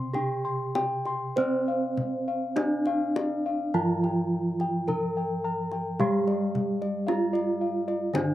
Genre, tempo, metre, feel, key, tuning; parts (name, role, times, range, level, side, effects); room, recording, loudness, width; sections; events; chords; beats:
Javanese gamelan; 49-58 BPM; 4/4; straight; C slendro; A4 = 440 Hz
gamelan-type bronze metallophone; melody; 0.0-8.3 s; C4 to C5; -30 LUFS; right 2 dB
gamelan-type bronze metallophone; accompaniment; 0.0-8.3 s; C3 to C4; -30 LUFS; right 1 dB
gamelan-type bossed gongs; arpeggios; 0.0-8.3 s; C5 to C6; -32 LUFS; left 3 dB; slapback echo
gamelan-type bossed gongs; bass; 0.0-8.3 s; G2+20c to C5; -35 LUFS; equal
kendang; percussion; 0.1-8.3 s; -34 LUFS; left 3 dB
little or no reverb; recorded outdoors, with no room sound; -25 LUFS; side -13 dB against mid
0.0-8.3 A section
0.15 | 1.37 2.57 3.74 4.88 | 6.00 7.08 8.14